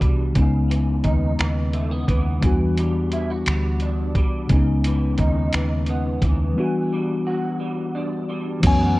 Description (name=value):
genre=slow six-eight R&B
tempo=58 BPM (dotted quarters)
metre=6/8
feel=straight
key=unclear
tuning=A4 = 440 Hz
part: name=electric guitar through a small old amp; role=second line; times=0.0-9.0 s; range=C#3 to F#4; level=-30 LUFS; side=right 3 dB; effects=ensemble chorus
part: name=mellow tine electric piano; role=accompaniment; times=0.0-9.0 s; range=C#3 to G#5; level=-23 LUFS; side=left 2 dB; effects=medium stereo tremolo
part: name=vintage muted fingered electric bass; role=bass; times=0.0-9.0 s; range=B#1 to F#2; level=-22 LUFS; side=equal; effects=none
part: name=dusty soul sampler-style drum kit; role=drums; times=0.0-8.8 s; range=crash cymbal, finger snaps, hi-hat, kick drum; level=-21 LUFS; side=equal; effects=none
room=little or no reverb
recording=worn, warbling old tape, cassette tape, warbly pitch drift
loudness=-19 LUFS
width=side -19 dB against mid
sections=0.0-8.6 A section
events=break 6.6-8.6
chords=0.4 C#m9; 2.4 Em9; 4.5 C#m9; 6.6 Em9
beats=| 0.36 1.39 | 2.42 3.46 | 4.49 5.53 | 6.56 7.60 | 8.63